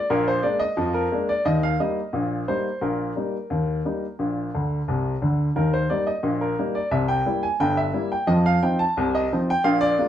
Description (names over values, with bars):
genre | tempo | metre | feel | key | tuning
ragtime piano | 88 BPM | 2/4 | straight | Eb major | A4 = 440 Hz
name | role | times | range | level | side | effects
clear upright piano | solo | 0.0-10.1 s | G1 to A5 | -21 LUFS | equal | none
room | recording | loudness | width
wet studio reverb, RT60 0.6 s | band playing live in one room | -21 LUFS | side -10 dB against mid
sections
0.0-10.1 A section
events
upright piano fill 4.5-5.6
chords
0.1 Bb7; 1.5 Eb/Bb; 4.2 Bb; 5.6 Eb; 6.9 C7; 8.3 F5